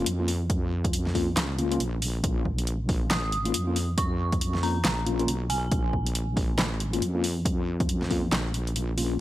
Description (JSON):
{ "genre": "deep dubstep", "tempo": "138 BPM", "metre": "4/4", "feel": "swing 60% on 16ths, half-time", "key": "Bb phrygian", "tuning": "A4 = 440 Hz", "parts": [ { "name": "mellow tine electric piano", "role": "stabs", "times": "0.0-9.2 s", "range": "Bb3 to F4", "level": "-32 LUFS", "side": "left 3 dB", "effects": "medium stereo tremolo, dub echo" }, { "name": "wobble bass", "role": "bass", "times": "0.0-9.2 s", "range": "Bb1 to F2", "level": "-28 LUFS", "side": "equal", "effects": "chorus, transformer saturation" }, { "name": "deep house drum kit", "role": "drums", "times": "0.1-9.1 s", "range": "handclaps, hi-hat, snare drum", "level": "-29 LUFS", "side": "equal", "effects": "overdrive" }, { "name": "electronic kick drum", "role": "drums", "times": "0.5-8.2 s", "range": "none", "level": "-28 LUFS", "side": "equal", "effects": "overdrive" }, { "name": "dark detuned synth bell", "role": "melody", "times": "3.1-6.1 s", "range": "Ab5 to Eb6", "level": "-33 LUFS", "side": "right 2 dB", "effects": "chorus, dub echo" } ], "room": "digital ambience", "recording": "dry, gritty hardware recording", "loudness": "-24 LUFS", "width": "side -15 dB against mid", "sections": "0.0-9.2 A section", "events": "none", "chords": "0.0 Bbm", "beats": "0.06 | 0.50 0.93 1.37 1.80 | 2.24 2.67 3.11 3.54 | 3.98 4.41 4.85 5.28 | 5.71 6.15 6.58 7.02 | 7.45 7.89 8.32 8.76" }